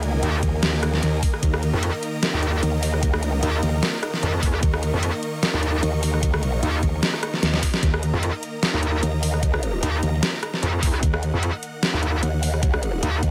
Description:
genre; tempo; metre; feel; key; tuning
heavy wobble dubstep; 150 BPM; 4/4; swing 54% on 16ths, half-time; Eb minor; A4 = 435 Hz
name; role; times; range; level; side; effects
supersaw chords; sustained chords; 0.0-13.3 s; Eb3 to Db6; -32 LUFS; equal; sidechain pumping
growl bass; bass; 0.0-13.3 s; Eb2; -25 LUFS; equal; chorus, overdrive
dubstep drum kit; drums; 0.0-13.3 s; hi-hat, rim click, snare drum; -27 LUFS; equal; none
metallic wobble bass; bass; 0.2-13.2 s; Eb2 to F2; -24 LUFS; equal; distortion, chorus, overdrive
electronic kick drum; drums; 0.4-13.3 s; none; -24 LUFS; equal; none
room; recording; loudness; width
little or no reverb; none; -22 LUFS; mono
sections
0.0-13.3 A section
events
drum fill 7.4-7.8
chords
0.0 Eb5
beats
0.23 0.63 1.03 | 1.43 1.83 2.23 2.63 | 3.03 3.43 3.83 4.23 | 4.63 5.03 5.43 5.83 | 6.23 6.63 7.03 7.43 | 7.83 8.23 8.63 9.03 | 9.43 9.83 10.23 10.63 | 11.03 11.43 11.83 12.23 | 12.63 13.03

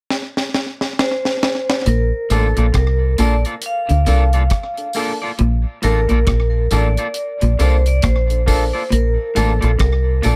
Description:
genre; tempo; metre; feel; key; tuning
roots reggae; 68 BPM; 4/4; swing 60% on 16ths; Bb major; A4 = 435 Hz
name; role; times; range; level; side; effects
deep reggae drum kit; drums; 0.1-10.4 s; hi-hat, kick drum, rim click, snare drum; -23 LUFS; equal; slapback echo
vibraphone with medium hard mallets; melody; 1.0-10.4 s; A4 to F5; -25 LUFS; equal; tape echo
semi-hollow electric guitar; riff; 1.9-10.4 s; A2 to D3; -27 LUFS; equal; none
deep dub fingered electric bass; bass; 1.9-10.4 s; A1 to D2; -18 LUFS; equal; none
electric guitar at the edge of break-up; accompaniment; 2.3-10.4 s; Bb3 to D5; -29 LUFS; equal; tape echo
warm upright piano; stabs; 2.3-10.4 s; Bb3 to A4; -26 LUFS; equal; none
tambourine; percussion; 2.3-10.4 s; none; -34 LUFS; equal; none
room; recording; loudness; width
little or no reverb; none; -17 LUFS; mono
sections
0.0-1.9 A section; 1.9-10.4 B section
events
drum fill 0.1-1.9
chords
0.0 N.C.; 1.9 Bbmaj7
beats
0.10 0.98 | 1.87 2.75 3.63 4.51 | 5.39 6.27 7.16 8.04 | 8.92 9.80

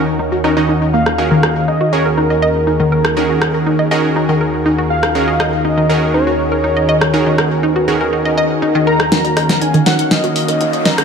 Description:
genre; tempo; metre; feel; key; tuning
progressive house; 121 BPM; 4/4; straight; unclear; A4 = 440 Hz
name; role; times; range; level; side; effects
lush unison pad; sustained chords; 0.0-11.0 s; Eb2 to F5; -18 LUFS; left 1 dB; chorus
analog pluck; arpeggios; 0.0-10.9 s; Eb3 to Eb5; -18 LUFS; equal; chorus, ping-pong delay
supersaw stab; stabs; 0.0-11.0 s; Eb3 to Eb5; -19 LUFS; right 2 dB; low-pass filter, ping-pong delay
wide unison lead; melody; 0.9-11.0 s; Bb4 to Bb5; -19 LUFS; equal; ping-pong delay
deep house drum kit; drums; 1.1-11.0 s; hi-hat, rim click, snare drum; -16 LUFS; equal; none
swell and riser; sound effects; 8.4-11.0 s; none; -24 LUFS; left 3 dB; none
tight sequencer bass; bass; 9.1-10.9 s; none; barely audible; none; none
room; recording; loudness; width
light reverb, digital ambience; none; -12 LUFS; side -6 dB against mid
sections
0.0-9.1 A section; 9.1-11.0 B section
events
filter sweep on synth pluck 0.0-9.1; filter sweep on analog synth pad 0.0-9.1; swell 8.4-9.1; build-up 9.1-11.0; drum fill 9.1-11.0; riser 9.1-11.0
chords
0.0 Ebm7; 1.2 Gbadd9/Eb; 9.1 Ebm7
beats
0.19 0.69 | 1.19 1.68 2.18 2.67 | 3.17 3.66 4.16 4.66 | 5.15 5.65 6.14 6.64 | 7.13 7.63 8.13 8.62 | 9.12 9.62 10.11 10.61

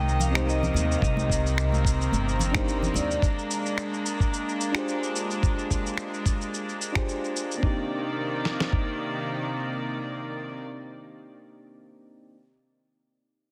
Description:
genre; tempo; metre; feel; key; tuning
sunset chillout; 109 BPM; 4/4; swing 55% on 16ths; C minor; A4 = 439 Hz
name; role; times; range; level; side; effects
vibraphone with hard mallets; melody; 0.0-3.2 s; D5 to G5; -35 LUFS; equal; tape echo
rich studio string section; sustained chords; 0.0-10.6 s; C3 to Eb5; -33 LUFS; equal; none
upright bass; bass; 0.0-3.1 s; G1 to Eb2; -28 LUFS; equal; none
wind-like tuned noise texture; texture; 0.0-7.6 s; Bb5; -43 LUFS; equal; built-in reverb
electronic shaker and finger snaps; drums; 0.1-7.6 s; none; -35 LUFS; equal; soft clipping on snare
congas; percussion; 0.2-3.1 s; none; -36 LUFS; equal; none
soft electric-piano-like synth keys; accompaniment; 0.3-12.3 s; Bb3 to C5; -36 LUFS; equal; chorus, vintage 12-bit sampler grit, tape echo
dusty soul sampler-style drum kit; drums; 1.0-8.9 s; kick drum, snare drum; -28 LUFS; equal; none
room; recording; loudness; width
moderate lush hall reverb, RT60 2.8 s; dense, heavily limited modern master; -27 LUFS; mono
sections
0.0-7.6 A section; 7.6-9.8 B section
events
none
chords
0.0 Cm9; 3.2 Bb13; 7.6 Cm9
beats
0.47 | 1.02 1.57 2.12 2.67 | 3.22 3.77 4.32 4.87 | 5.42 5.97 6.52 7.07 | 7.62 8.18 8.72 9.28

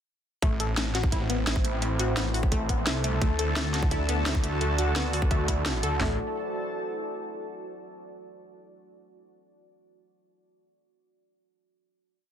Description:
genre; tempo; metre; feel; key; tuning
dark technical drum and bass; 172 BPM; 4/4; straight; A dorian; A4 = 437 Hz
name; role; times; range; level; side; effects
dark analog pad; sustained chords; 0.7-6.2 s; A3 to D5; -36 LUFS; equal; chorus, phaser, sidechain pumping
analog pluck; arpeggios; 0.4-6.2 s; A3 to A4; -33 LUFS; left 3 dB; chorus, phaser, sidechain pumping, tape echo
snarling distorted saw bass; bass; 0.4-6.2 s; A1 to D2; -28 LUFS; equal; distortion, sidechain pumping
drum and bass drum kit; drums; 0.4-6.1 s; handclaps, kick drum, snare drum, toms; -26 LUFS; equal; small room ambience
drum and bass drum kit; drums; 0.4-5.9 s; hi-hat, snare drum; -30 LUFS; equal; small room ambience
deep dark ambient pad; texture; 0.9-7.4 s; E4 to A5; -34 LUFS; equal; chorus, built-in reverb, sidechain pumping
room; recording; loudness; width
light reverb; dense, heavily limited modern master; -25 LUFS; side -9 dB against mid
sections
0.4-6.0 drop; 6.0-7.4 final chord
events
drop 0.4-6.0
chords
0.4 Am; 3.2 D; 6.0 Am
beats
| 0.42 0.77 1.12 1.47 | 1.82 2.17 2.52 2.87 | 3.21 3.56 3.91 4.26 | 4.61 4.96 5.31 5.66 | 6.01 6.36 6.70 7.05

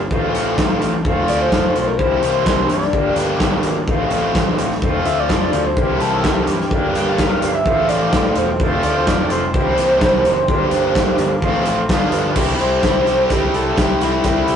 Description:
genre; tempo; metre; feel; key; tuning
indie rock; 127 BPM; 4/4; straight; C mixolydian; A4 = 440 Hz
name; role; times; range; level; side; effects
overdriven synth lead; melody; 0.0-14.6 s; E4 to G5; -19 LUFS; equal; phaser
raw garage guitar; riff; 0.0-14.6 s; E3 to G4; -22 LUFS; left 4 dB; overdrive
raw garage guitar; riff; 0.0-14.6 s; G2 to F4; -22 LUFS; right 3 dB; overdrive
fuzz picked electric bass; bass; 0.0-14.6 s; E1 to G2; -24 LUFS; equal; overdrive
big rock drum kit; drums; 0.1-14.6 s; crash cymbal, hi-hat, kick drum, snare drum; -20 LUFS; equal; none
warm analog pad; sustained chords; 4.8-14.6 s; G4 to D6; -30 LUFS; equal; none
room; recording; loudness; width
light reverb; rough rehearsal-room recording, warm saturation, nothing above 10.6 kHz; -14 LUFS; side -8 dB against mid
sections
0.0-12.4 A section; 12.4-14.6 B section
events
analog synth lead solo 12.4-14.6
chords
0.1 F/A; 1.1 F6; 2.0 C5; 2.9 Gm; 3.9 F/A; 4.8 F6; 5.8 C5; 6.7 Gm7; 7.7 F6/A; 8.6 F6; 9.5 C5; 10.5 Gm7; 11.4 F6/A; 11.9 G7; 12.4 C6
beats
0.11 0.58 | 1.05 1.52 2.00 2.47 | 2.94 3.41 3.88 4.36 | 4.83 5.30 5.77 6.24 | 6.71 7.18 7.66 8.13 | 8.60 9.07 9.54 10.01 | 10.48 10.96 11.43 11.90 | 12.37 12.84 13.31 13.78 | 14.25

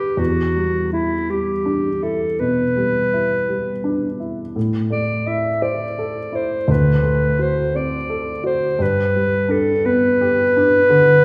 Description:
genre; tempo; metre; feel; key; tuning
classical, romantic duo for clarinet and grand piano; 56 BPM (dotted quarters); 12/8; rubato; unclear; A4 = 440 Hz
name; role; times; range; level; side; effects
clear clarinet; melody; 0.0-11.2 s; E4 to E5; -21 LUFS; equal; none
dark baby grand piano; accompaniment; 0.0-11.2 s; D2 to C5; -22 LUFS; equal; none
room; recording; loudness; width
wet recital hall reverb, RT60 1.4 s; heard from further back in the room; -19 LUFS; mono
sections
0.0-11.2 A section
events
none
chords
0.2 Em7; 4.6 Am; 6.7 D7; 8.8 G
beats
| 0.19 1.30 2.40 3.48 | 4.56 5.62 6.69 7.75 | 8.80 9.85 10.90

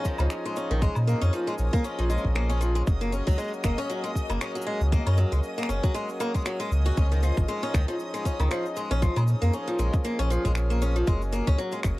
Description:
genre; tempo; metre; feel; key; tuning
folktronica; 117 BPM; 4/4; swing 56% on 16ths; F# major; A4 = 442 Hz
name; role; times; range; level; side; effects
hand-pumped harmonium; sustained chords; 0.0-12.0 s; E#3 to G#4; -34 LUFS; equal; none
picked swing-style acoustic guitar; arpeggios; 0.0-11.8 s; D#3 to F#4; -30 LUFS; left 1 dB; tape echo
cabasa, woodblock and finger snaps; drums; 0.0-12.0 s; none; -37 LUFS; left 1 dB; none
backwards swelling texture; texture; 0.0-12.0 s; D#5 to D#6; -40 LUFS; left 1 dB; built-in reverb
electronic kick drum; drums; 0.1-12.0 s; none; -25 LUFS; equal; none
warm sub bass; bass; 0.2-12.0 s; F#1 to A#2; -24 LUFS; equal; none
room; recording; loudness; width
little or no reverb; dry, close 1970s-style studio recording, vinyl crackle; -23 LUFS; side -18 dB against mid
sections
0.0-12.0 A section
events
none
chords
0.0 C#add9; 2.9 F#add9; 7.0 C#add9; 9.0 A#m7; 11.1 F#add9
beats
0.30 | 0.82 1.33 1.84 2.35 | 2.87 3.38 3.89 4.41 | 4.92 5.43 5.95 6.46 | 6.97 7.48 8.00 8.51 | 9.02 9.54 10.05 10.56 | 11.07 11.59

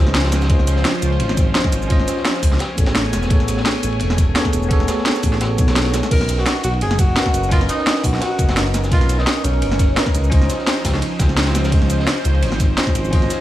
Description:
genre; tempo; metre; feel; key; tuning
liquid drum and bass; 171 BPM; 4/4; swing 54% on 16ths; unclear; A4 = 441 Hz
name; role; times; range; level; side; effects
bell-like tine electric piano; accompaniment; 0.0-13.4 s; B3 to D#5; -24 LUFS; equal; fast stereo tremolo, dub echo
lush unison pad; sustained chords; 0.0-13.4 s; E#3 to G#5; -27 LUFS; right 1 dB; chorus, phaser, sidechain pumping
smooth synth bass; bass; 0.0-13.3 s; E1 to C#2; -19 LUFS; equal; none
crunchy breakbeat drum kit; drums; 0.1-13.4 s; ride cymbal, snare drum; -29 LUFS; equal; high-pass filter on cymbals, high-pass filter on snare, high-pass filter on room
drum and bass drum kit; drums; 0.1-13.4 s; cabasa, crash cymbal, hi-hat, ride cymbal, snare drum; -22 LUFS; equal; overdrive
electronic kick drum; drums; 0.5-13.2 s; none; -17 LUFS; equal; overdrive
breathy tenor saxophone; melody; 6.1-10.1 s; C#4 to A#4; -24 LUFS; equal; vintage 12-bit sampler grit, dub echo
room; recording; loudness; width
digital ambience; small room ambience; -15 LUFS; side -14 dB against mid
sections
0.0-13.4 A section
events
none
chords
0.0 C#maj9; 2.6 Amaj9; 6.1 Bmaj9; 10.3 C#maj9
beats
0.15 | 0.50 0.85 1.20 1.55 | 1.90 2.25 2.60 2.95 | 3.30 3.65 4.01 4.36 | 4.71 5.06 5.41 5.76 | 6.11 6.46 6.81 7.16 | 7.51 7.87 8.22 8.57 | 8.92 9.27 9.62 9.97 | 10.32 10.67 11.02 11.37 | 11.72 12.08 12.43 12.78 | 13.13

